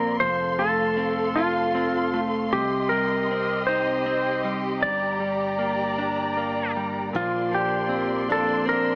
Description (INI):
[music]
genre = pop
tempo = 52 BPM (dotted quarters)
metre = 6/8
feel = straight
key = Bb major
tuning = A4 = 440 Hz
[part]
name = clean lap steel guitar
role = melody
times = 0.0-9.0 s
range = F4 to D5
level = -24 LUFS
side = equal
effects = none
[part]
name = direct-recorded clean electric guitar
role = accompaniment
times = 0.0-9.0 s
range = G2 to F4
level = -28 LUFS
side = equal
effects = spring reverb
[part]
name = muted studio string section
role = sustained chords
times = 0.0-9.0 s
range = Bb3 to C6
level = -28 LUFS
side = equal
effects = none
[part]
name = fingered electric bass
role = bass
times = 0.0-9.0 s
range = F1 to C2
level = -37 LUFS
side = equal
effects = none
[part]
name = fingerpicked steel-string acoustic guitar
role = arpeggios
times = 7.1-9.0 s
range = F3 to D4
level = -32 LUFS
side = equal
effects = none
[sound]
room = moderate plate reverb, RT60 3.2 s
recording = small speaker sound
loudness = -21 LUFS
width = side -32 dB against mid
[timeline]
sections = 0.0-9.0 A section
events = none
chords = 0.2 F; 2.5 Cm; 4.8 Gm; 7.1 Bbadd9